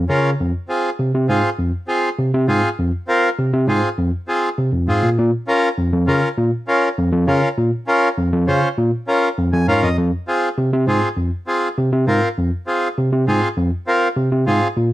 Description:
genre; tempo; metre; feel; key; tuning
latin, cumbia; 200 BPM; 4/4; straight; unclear; A4 = 440 Hz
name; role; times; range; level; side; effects
overdriven tine electric piano; bass; 0.0-14.9 s; F2 to Db3; -17 LUFS; equal; none
accordion; accompaniment; 0.1-14.7 s; C4 to Ab5; -18 LUFS; equal; none
room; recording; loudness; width
light reverb; none; -16 LUFS; side -15 dB against mid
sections
0.4-10.0 A section; 10.0-14.9 B section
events
accordion fill 9.4-10.0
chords
0.4 Fm; 5.2 Bbm; 10.0 Fm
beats
0.09 | 0.39 0.69 0.99 1.29 | 1.59 1.89 2.19 2.48 | 2.79 3.08 3.38 3.68 | 3.98 4.28 4.58 4.88 | 5.18 5.48 5.78 6.08 | 6.38 6.68 6.98 7.28 | 7.58 7.88 8.18 8.48 | 8.78 9.08 9.38 9.68 | 9.98 10.28 10.58 10.88 | 11.18 11.48 11.78 12.08 | 12.38 12.68 12.97 13.27 | 13.57 13.87 14.17 14.47 | 14.77

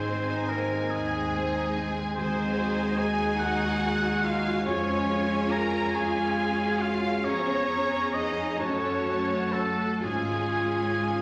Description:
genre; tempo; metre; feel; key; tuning
classical, slow romantic movement for symphony orchestra; 36-49 BPM (dotted quarters); 6/8; rubato; Db major; A4 = 439 Hz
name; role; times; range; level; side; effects
warm symphonic violin section; melody; 0.0-11.2 s; F5 to Bb5; -40 LUFS; equal; none
warm oboe; second line; 0.0-11.2 s; Ab4 to Bb5; -34 LUFS; equal; none
warm symphonic violin section; second line; 0.0-11.2 s; Ab4 to Bb5; -36 LUFS; equal; none
warm symphonic viola section; accompaniment; 0.0-11.2 s; Eb3 to Ab4; -38 LUFS; equal; none
dark French horn section; sustained chords; 0.0-11.2 s; Ab3 to Ab4; -33 LUFS; equal; none
concert harp; arpeggios; 0.0-11.2 s; F2 to Eb6; -37 LUFS; equal; none
dark studio double bass section; bass; 0.0-11.2 s; Ab1 to Gb2; -40 LUFS; equal; none
warm symphonic cello section; bass; 0.0-11.2 s; Ab3 to Bb4; -38 LUFS; equal; none
room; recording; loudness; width
wet recital hall reverb, RT60 1.3 s; vinyl crackle; -27 LUFS; mono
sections
0.0-11.2 A section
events
none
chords
0.0 Ab; 2.2 Ab7/Eb; 4.7 Db/F; 7.3 Db7/F; 8.6 Gbm; 10.0 Db/Ab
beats
0.93 | 2.18 3.42 | 4.67 5.96 | 7.26 8.59 | 10.04

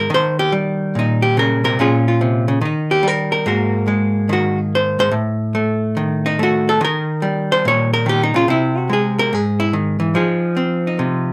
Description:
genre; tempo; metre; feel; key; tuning
solo jazz; 143 BPM; 4/4; swing 66% on 8ths; Eb mixolydian; A4 = 437 Hz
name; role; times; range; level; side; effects
archtop guitar, miked and amplified; solo; 0.0-11.3 s; Ab2 to Db5; -17 LUFS; equal; none
room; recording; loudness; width
wet club reverb, RT60 0.5 s; none; -17 LUFS; mono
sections
0.0-11.3 A section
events
hollow-body jazz guitar solo 0.0-11.3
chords
0.1 Eb7; 1.8 Bbm7; 2.6 Eb; 3.5 Absus2; 5.1 Ebdim/A; 6.8 Eb7; 8.5 Caug; 10.2 Fm7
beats
| 0.10 0.52 0.94 1.36 | 1.78 2.20 2.62 3.04 | 3.46 3.88 4.29 4.71 | 5.13 5.55 5.97 6.39 | 6.81 7.22 7.64 8.06 | 8.48 8.90 9.31 9.73 | 10.15 10.57 10.99

